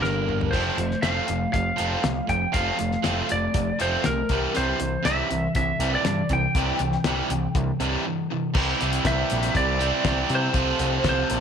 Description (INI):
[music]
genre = classic rock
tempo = 120 BPM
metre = 4/4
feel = straight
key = unclear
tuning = A4 = 440 Hz
[part]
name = lightly driven lead guitar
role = melody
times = 0.0-11.4 s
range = Bb4 to G5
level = -27 LUFS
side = equal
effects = none
[part]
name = crunchy overdriven guitar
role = riff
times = 0.0-11.4 s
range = G2 to A4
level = -27 LUFS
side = right 11 dB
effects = none
[part]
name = distorted electric guitar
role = riff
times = 0.0-11.4 s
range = G2 to F4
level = -29 LUFS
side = left 12 dB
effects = overdrive
[part]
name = growling picked electric bass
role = bass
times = 0.0-11.4 s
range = F1 to C3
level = -28 LUFS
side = equal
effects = overdrive
[part]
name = damped 70s drum kit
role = drums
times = 0.0-11.4 s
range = crash cymbal, hi-hat, kick drum, snare drum, toms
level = -28 LUFS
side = left 2 dB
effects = none
[sound]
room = light reverb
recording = 1960s-style stereo with parts hard left and right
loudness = -21 LUFS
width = side -7 dB against mid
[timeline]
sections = 0.5-8.6 A section; 8.6-11.4 B section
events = drum fill 0.0-0.5; break 8.1-8.6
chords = 0.0 Gm; 0.5 F; 4.3 C; 10.6 F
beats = 0.03 | 0.54 1.04 1.54 2.04 | 2.54 3.04 3.54 4.05 | 4.55 5.05 5.55 6.05 | 6.55 7.05 7.55 8.05 | 8.55 9.05 9.55 10.05 | 10.55 11.05